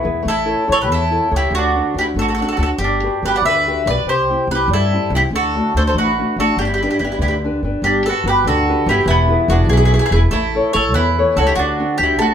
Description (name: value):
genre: italian folk, Italian serenade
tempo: 95 BPM (dotted quarters)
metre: 6/8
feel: straight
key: G major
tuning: A4 = 440 Hz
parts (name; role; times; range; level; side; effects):
- mandolin; melody; 0.0-12.3 s; E4 to F#5; -18 LUFS; equal; none
- mandolin; second line; 0.0-12.3 s; B3 to D5; -22 LUFS; right 3 dB; none
- nylon-string guitar; accompaniment; 0.0-12.3 s; B2 to C#5; -21 LUFS; left 2 dB; none
- upright bass; bass; 0.0-12.3 s; E1 to G2; -19 LUFS; equal; none
room: wet studio reverb, RT60 0.6 s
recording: band playing live in one room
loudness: -14 LUFS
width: side -8 dB against mid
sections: 0.0-7.8 A section; 7.8-12.3 A section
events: none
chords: 0.3 A; 1.5 D7; 2.8 Gmaj7; 4.1 C; 5.3 D; 6.6 G; 7.8 Gmaj7; 9.1 E; 10.3 A; 11.6 D7